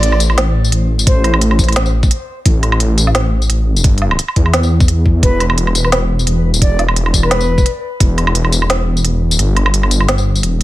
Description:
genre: half-time drum and bass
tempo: 173 BPM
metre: 4/4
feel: swing 55% on 16ths, half-time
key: A minor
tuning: A4 = 440 Hz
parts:
  - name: bright reedy concert flute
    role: melody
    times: 0.0-1.3, 5.2-7.7 s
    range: B4 to D5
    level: -22 LUFS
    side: equal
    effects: tape echo
  - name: dark detuned saw bass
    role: bass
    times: 0.0-10.6 s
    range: E1 to E2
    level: -13 LUFS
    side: equal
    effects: none
  - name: organic electronic drum kit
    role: drums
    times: 0.0-10.6 s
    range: hi-hat, snare drum, tambourine, woodblock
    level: -17 LUFS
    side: right 1 dB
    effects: studio ambience
  - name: electronic kick drum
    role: drums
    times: 1.1-8.1 s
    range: none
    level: -12 LUFS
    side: equal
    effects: studio ambience
room: digital ambience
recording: none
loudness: -11 LUFS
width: side -16 dB against mid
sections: 0.0-10.6 A section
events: kick drops out 9.4-10.6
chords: 0.0 A5; 5.2 Em

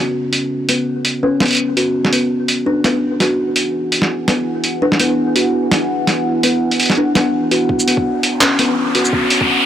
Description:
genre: half-time drum and bass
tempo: 167 BPM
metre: 4/4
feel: swing 56% on 16ths, half-time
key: unclear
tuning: A4 = 440 Hz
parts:
  - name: deep dark ambient pad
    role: sustained chords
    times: 0.0-9.7 s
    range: C#4 to G#5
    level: -23 LUFS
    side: right 2 dB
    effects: chorus, built-in reverb, vintage 12-bit sampler grit, sidechain pumping
  - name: kalimba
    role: arpeggios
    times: 0.0-9.7 s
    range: B3 to F#4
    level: -16 LUFS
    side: left 1 dB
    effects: low-pass filter, analog delay
  - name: boom bap sampler-style drum kit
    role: drums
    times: 0.3-9.4 s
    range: handclaps, hi-hat, shaker, snare drum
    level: -16 LUFS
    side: right 1 dB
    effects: none
  - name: electronic kick drum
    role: drums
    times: 7.7-9.5 s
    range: none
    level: -22 LUFS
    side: right 1 dB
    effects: high-pass filter on kick, high-pass filter on room
  - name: riser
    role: sound effects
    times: 8.2-9.7 s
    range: none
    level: -18 LUFS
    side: equal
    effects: none
room: light reverb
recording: dry, gritty hardware recording, transformer saturation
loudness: -13 LUFS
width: side -10 dB against mid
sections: 0.0-7.7 A section; 7.7-9.7 B section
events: filter sweep on ambient pad 0.0-7.7; build-up 7.7-9.7; riser 8.2-9.7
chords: 0.0 Bsus2; 1.9 Eadd9; 7.7 Bsus2

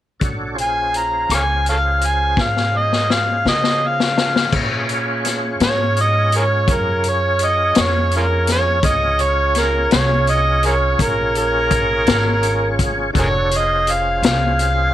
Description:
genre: slow blues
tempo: 56 BPM (dotted quarters)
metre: 12/8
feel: straight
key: Bb minor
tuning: A4 = 440 Hz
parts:
  - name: tonewheel organ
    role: sustained chords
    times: 0.2-14.9 s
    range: Db4 to Db5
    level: -23 LUFS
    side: right 1 dB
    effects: overdrive, chorus vibrato, slow rotary speaker
  - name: upright bass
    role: bass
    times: 0.2-14.9 s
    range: F1 to Db3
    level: -21 LUFS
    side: right 1 dB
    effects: none
  - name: vintage drum kit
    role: drums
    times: 0.2-14.8 s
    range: crash cymbal, hi-hat, kick drum, rim click, snare drum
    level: -20 LUFS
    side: left 4 dB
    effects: none
  - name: overdriven harmonica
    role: melody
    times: 0.6-14.9 s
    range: Db4 to Bb5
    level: -18 LUFS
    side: equal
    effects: none
room: small room ambience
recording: 1960s-style stereo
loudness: -15 LUFS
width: side -12 dB against mid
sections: 0.2-4.5 A section; 4.5-14.9 B section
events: drum fill 2.4-4.5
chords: 0.2 Bbm7

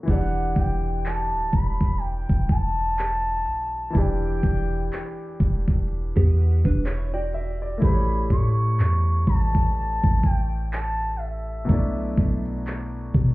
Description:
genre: contemporary R&B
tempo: 62 BPM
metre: 4/4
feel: swing 58% on 16ths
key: E dorian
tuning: A4 = 441 Hz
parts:
  - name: clear concert grand piano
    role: accompaniment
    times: 0.0-13.3 s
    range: B2 to G5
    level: -31 LUFS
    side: left 2 dB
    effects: none
  - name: gliding portamento lead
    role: melody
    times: 0.1-12.7 s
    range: D#5 to C#6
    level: -28 LUFS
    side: equal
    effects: chorus, phaser, tape echo
  - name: soft 808-style bass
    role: bass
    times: 0.1-13.3 s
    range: D1 to B2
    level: -24 LUFS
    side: equal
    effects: none
  - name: trap drum kit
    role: drums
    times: 0.1-13.3 s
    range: crash cymbal, handclaps, hi-hat, kick drum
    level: -22 LUFS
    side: equal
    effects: overdrive
  - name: direct-recorded clean electric guitar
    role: arpeggios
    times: 6.2-8.5 s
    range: B3 to D5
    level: -32 LUFS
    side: right 3 dB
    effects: analog chorus, tape echo
room: little or no reverb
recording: heard muffled through a wall, club reverb, EQ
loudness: -21 LUFS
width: side -19 dB against mid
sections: 0.1-13.3 A section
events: none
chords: 0.1 Em7; 7.8 A7; 11.7 Bm7

